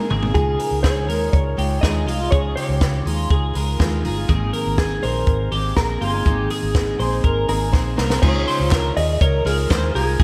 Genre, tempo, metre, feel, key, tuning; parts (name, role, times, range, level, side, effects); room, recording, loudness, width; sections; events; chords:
jangly indie pop; 122 BPM; 4/4; straight; A4 = 440 Hz
picked steel-string acoustic guitar; accompaniment; 0.0-10.2 s; Ab2 to Ab4; -28 LUFS; equal
twelve-string electric guitar; arpeggios; 0.0-10.2 s; F4 to C5; -28 LUFS; equal; analog chorus, slapback echo
vintage muted fingered electric bass; bass; 0.1-10.2 s; G1 to Eb2; -25 LUFS; equal
compact cocktail drum kit; drums; 0.1-10.2 s; crash cymbal, hi-hat, kick drum, ride cymbal, snare drum, toms; -23 LUFS; equal
mellow electric guitar; melody; 0.3-10.2 s; Ab4 to Eb5; -28 LUFS; equal; phaser, slapback echo
group handclap; percussion; 8.7-9.8 s; -36 LUFS; equal
moderate recital hall reverb, RT60 1.4 s; big arena sound; -20 LUFS; mono
0.0-8.2 A section; 8.2-10.2 B section
drum fill 0.0-0.4, 7.7-8.2
0.4 Dbadd9; 4.3 Abadd9; 8.2 Dbadd9